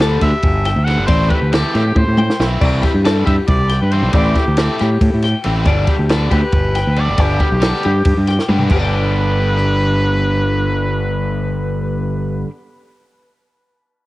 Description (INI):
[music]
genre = math rock and midwest emo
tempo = 276 BPM (eighths)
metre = 7/8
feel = straight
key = G major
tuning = A4 = 439 Hz
[part]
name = twelve-string electric guitar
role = arpeggios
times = 0.0-12.6 s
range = G4 to G5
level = -22 LUFS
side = left 5 dB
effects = none
[part]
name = crunchy overdriven guitar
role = riff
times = 0.0-12.5 s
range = G2 to G4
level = -22 LUFS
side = equal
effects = none
[part]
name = growling fingered electric bass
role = bass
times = 0.0-12.4 s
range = F#1 to A2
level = -16 LUFS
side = equal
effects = overdrive, transformer saturation
[part]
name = compact cocktail drum kit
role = drums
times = 0.0-9.7 s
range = crash cymbal, kick drum, ride cymbal, rim click, snare drum, toms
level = -18 LUFS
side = equal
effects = cassette tape
[part]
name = clear trumpet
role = melody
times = 0.2-12.4 s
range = G4 to F#5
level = -22 LUFS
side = equal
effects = cassette tape
[sound]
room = small room ambience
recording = home recording on cassette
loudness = -13 LUFS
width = side -18 dB against mid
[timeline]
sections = 0.0-8.7 A section; 8.7-11.8 B section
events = drum fill 2.0-2.6, 8.4-8.7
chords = 0.0 Gadd9; 1.1 Am9; 2.6 Cadd9; 4.1 Am7; 5.7 Gadd9; 8.7 G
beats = 0.01 0.23 0.44 0.66 0.88 | 1.10 1.31 1.53 1.75 1.97 2.18 2.40 | 2.62 2.84 3.06 3.27 3.49 3.71 3.92 | 4.14 4.36 4.58 4.79 5.01 5.23 5.45 | 5.67 5.88 6.10 6.32 6.54 6.75 6.97 | 7.19 7.41 7.62 7.84 8.06 8.28 8.49 | 8.71 8.93 9.15 9.36 9.58 9.80 10.02 | 10.23 10.45 10.67 10.89 11.10 11.32 11.54